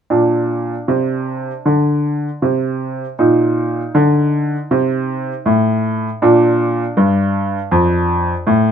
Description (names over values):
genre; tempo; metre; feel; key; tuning
classical-period piano sonatina; 79 BPM; 4/4; rubato; Bb major; A4 = 441 Hz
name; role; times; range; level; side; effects
bright baby grand piano; solo; 0.1-8.7 s; F2 to Eb4; -14 LUFS; equal; none
room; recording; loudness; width
moderate studio reverb, RT60 0.6 s; minimal, uncompressed stereo recording; -14 LUFS; side -8 dB against mid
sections
0.1-8.7 A section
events
none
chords
0.1 Bb; 3.2 Cm7/Bb; 6.2 Bb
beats
| 0.11 0.89 1.66 2.43 | 3.19 3.95 4.71 5.46 | 6.22 6.97 7.72 8.47